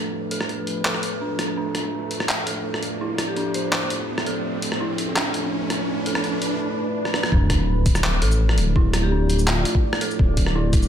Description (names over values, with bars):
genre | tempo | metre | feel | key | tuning
half-time drum and bass | 167 BPM | 4/4 | half-time | D dorian | A4 = 440 Hz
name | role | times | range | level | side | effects
deep dark ambient pad | sustained chords | 0.0-10.9 s | F3 to D5 | -28 LUFS | right 2 dB | chorus, built-in reverb, sidechain pumping
dark detuned synth bell | arpeggios | 0.0-10.9 s | D4 to A4 | -30 LUFS | equal | chorus, low-pass filter, tape echo
dark detuned saw bass | bass | 0.0-10.9 s | D1 to A1 | -24 LUFS | equal | high-pass filter
riser, swell and sub drop | sound effects | 0.2-8.8 s | none | -30 LUFS | equal | none
boom bap sampler-style drum kit | drums | 0.3-10.9 s | handclaps, hi-hat, rim click, shaker | -26 LUFS | equal | none
vibraphone with medium hard mallets | melody | 3.3-3.9, 9.0-9.6 s | F4 to C5 | -32 LUFS | left 3 dB | low-pass filter, dub echo
electronic kick drum | drums | 7.3-10.8 s | none | -19 LUFS | equal | none
room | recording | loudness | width
light reverb, digital ambience | none | -20 LUFS | side -9 dB against mid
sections
0.0-7.3 A section; 7.3-10.9 B section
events
build-up 0.0-7.3; riser 0.2-6.6; swell 6.6-7.3; drum fill 7.1; drop 7.3-10.9; impact 7.3-8.8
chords
0.0 Dm